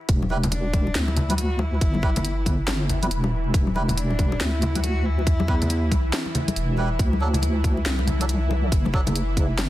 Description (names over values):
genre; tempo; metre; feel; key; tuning
deep dubstep; 139 BPM; 4/4; swing 61% on 16ths, half-time; E minor; A4 = 438 Hz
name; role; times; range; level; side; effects
bowed-like drone; sustained chords; 0.1-9.7 s; E3 to E4; -33 LUFS; equal; built-in reverb
deep soft wobble bass; bass; 0.1-9.7 s; E1 to E2; -23 LUFS; equal; chorus, high-pass filter
electronic kick drum; drums; 0.1-9.5 s; none; -22 LUFS; equal; overdrive, high-pass filter on kick, studio reverb
garage drum kit; drums; 0.1-9.7 s; handclaps, hi-hat, snare drum; -28 LUFS; equal; overdrive, studio reverb
congas; percussion; 0.2-9.7 s; none; -29 LUFS; left 2 dB; none
melodica; stabs; 0.3-9.0 s; F#3 to B4; -33 LUFS; right 3 dB; dub echo
dark cello; melody; 0.5-6.3 s; D4 to F#4; -34 LUFS; left 2 dB; dub echo
room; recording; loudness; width
little or no reverb; dense, heavily limited modern master, vinyl crackle; -20 LUFS; side -15 dB against mid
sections
0.1-9.7 A section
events
drop 0.1-9.7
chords
0.1 Em; 7.0 D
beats
| 0.09 0.52 0.95 1.38 | 1.81 2.25 2.68 3.11 | 3.54 3.97 4.40 4.84 | 5.27 5.70 6.13 6.56 | 6.99 7.43 7.86 8.29 | 8.72 9.15 9.58